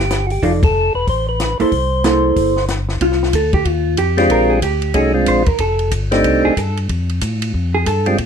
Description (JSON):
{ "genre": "soul jazz organ trio", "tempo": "185 BPM", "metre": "4/4", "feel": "swing 62% on 8ths", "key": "F mixolydian", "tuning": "A4 = 439 Hz", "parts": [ { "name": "percussive tonewheel organ", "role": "melody", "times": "0.0-8.2 s", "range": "Ab3 to C5", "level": "-16 LUFS", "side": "equal", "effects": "slow rotary speaker" }, { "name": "vintage hollow-body jazz guitar", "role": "accompaniment", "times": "0.0-8.1 s", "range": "F3 to D5", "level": "-18 LUFS", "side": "right 2 dB", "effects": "none" }, { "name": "tonewheel organ", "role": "bass", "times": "0.0-8.3 s", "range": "E1 to Bb2", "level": "-19 LUFS", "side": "left 1 dB", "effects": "slow rotary speaker" }, { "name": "compact cocktail drum kit", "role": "drums", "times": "0.1-8.3 s", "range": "hi-hat, kick drum, ride cymbal, snare drum", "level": "-22 LUFS", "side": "left 1 dB", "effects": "none" } ], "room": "moderate studio reverb, RT60 0.5 s", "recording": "dark, warm production", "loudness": "-14 LUFS", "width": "side -7 dB against mid", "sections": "0.0-3.0 A section; 3.0-8.3 B section", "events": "band accent 0.6; hollow-body jazz guitar solo 3.0-8.3", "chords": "0.4 F6; 1.7 C6; 3.0 Fsus2; 4.3 Bb13; 5.6 F13" }